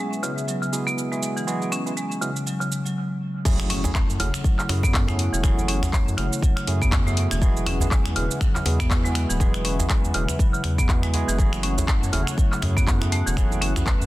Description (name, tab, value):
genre	afro house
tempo	121 BPM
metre	4/4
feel	swing 58% on 16ths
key	F# minor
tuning	A4 = 439 Hz
part	dark analog pad	sustained chords	0.0-14.1 s	A3 to F#5	-34 LUFS	equal	chorus, sidechain pumping
part	marimba with hard mallets	arpeggios	0.0-14.0 s	C#3 to C#4	-27 LUFS	equal	sidechain pumping, dub echo
part	house drum kit	drums	0.1-14.1 s	cabasa, crash cymbal, finger snaps, handclaps, hi-hat	-29 LUFS	equal	soft clipping on snare
part	barky tine electric piano	stabs	0.2-13.8 s	G#3 to G#4	-32 LUFS	right 4 dB	sidechain pumping, dub echo
part	electronic kick drum	drums	3.5-14.0 s	none	-21 LUFS	equal	none
part	impact	sound effects	3.5-5.4 s	none	-34 LUFS	left 1 dB	none
part	round analog bass	bass	3.6-14.1 s	D1 to F#2	-25 LUFS	equal	sidechain pumping
part	djembe	percussion	3.8-14.0 s	none	-30 LUFS	equal	none
room	little or no reverb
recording	dense, heavily limited modern master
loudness	-20 LUFS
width	side -17 dB against mid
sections	0.0-3.5 A section; 3.5-14.1 B section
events	drop 3.5-14.1; impact 3.5-5.4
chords	0.0 Eadd9; 3.5 F#m7; 7.4 Eadd9; 11.4 F#m7